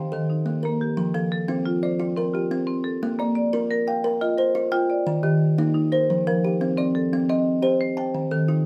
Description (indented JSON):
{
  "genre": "southern african traditional, mbira-style interlocking cycle",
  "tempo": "117 BPM (dotted quarters)",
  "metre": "12/8",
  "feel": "straight",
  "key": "F mixolydian",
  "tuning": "A4 = 441 Hz",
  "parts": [
    { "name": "kalimba", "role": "arpeggios", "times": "0.0-8.7 s", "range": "Eb3 to A5", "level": "-26 LUFS", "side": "equal", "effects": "none" },
    { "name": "marimba with medium hard mallets", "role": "arpeggios", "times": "0.0-8.7 s", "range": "Eb3 to G5", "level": "-26 LUFS", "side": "equal", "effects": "none" }
  ],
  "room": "moderate small room reverb, RT60 0.5 s",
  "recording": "close, detailed microphones",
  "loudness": "-23 LUFS",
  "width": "mono",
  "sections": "1.0-8.7 A section",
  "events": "none",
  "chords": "0.0 Eb; 1.0 F; 3.0 Bb; 5.1 Eb; 6.1 F; 7.1 Cm; 8.1 Eb"
}